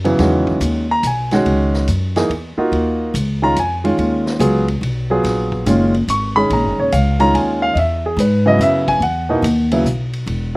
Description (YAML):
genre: modal jazz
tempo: 143 BPM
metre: 3/4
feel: swing 66% on 8ths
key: Eb phrygian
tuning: A4 = 442 Hz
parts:
  - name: warm grand piano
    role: accompaniment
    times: 0.0-9.8 s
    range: Cb3 to Db6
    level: -16 LUFS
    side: right 1 dB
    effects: none
  - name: upright bass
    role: bass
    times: 0.0-10.6 s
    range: Eb1 to Ab2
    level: -18 LUFS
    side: equal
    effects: none
  - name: vintage drum kit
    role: drums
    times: 0.1-10.4 s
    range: hi-hat, kick drum, ride cymbal, snare drum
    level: -30 LUFS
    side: equal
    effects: none
room: little or no reverb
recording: recorded outdoors, with no room sound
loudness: -14 LUFS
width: side -22 dB against mid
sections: 0.0-10.6 A section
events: none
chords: 0.0 Dbm9; 2.7 Ebm9; 7.8 Dbm9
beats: | 0.19 0.62 1.04 | 1.46 1.88 2.30 | 2.72 3.14 3.56 | 3.98 4.40 4.82 | 5.24 5.66 6.08 | 6.50 6.92 7.34 | 7.76 8.18 8.60 | 9.02 9.44 9.86 | 10.27